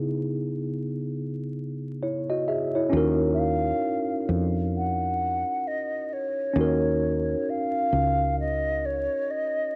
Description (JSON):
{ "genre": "hip hop", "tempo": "66 BPM", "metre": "4/4", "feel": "swing 60% on 16ths", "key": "Eb phrygian", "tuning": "A4 = 438 Hz", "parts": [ { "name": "mellow tine electric piano", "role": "accompaniment", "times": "0.0-9.8 s", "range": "Db3 to Fb5", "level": "-30 LUFS", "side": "equal", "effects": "cassette tape" }, { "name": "woody fretless electric bass", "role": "bass", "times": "2.9-9.1 s", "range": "Db2 to F2", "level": "-30 LUFS", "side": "equal", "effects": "none" }, { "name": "mellow hollow concert flute", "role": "melody", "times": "3.3-9.8 s", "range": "Db5 to Gb5", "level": "-30 LUFS", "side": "equal", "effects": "cassette tape, analog delay" } ], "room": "moderate spring reverb, RT60 1.7 s, small room ambience", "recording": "home recording on cassette, vinyl crackle", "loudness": "-26 LUFS", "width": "mono", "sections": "0.0-2.9 A section; 2.9-9.8 B section", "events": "none", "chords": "0.0 Dbm9; 2.9 Ebm9" }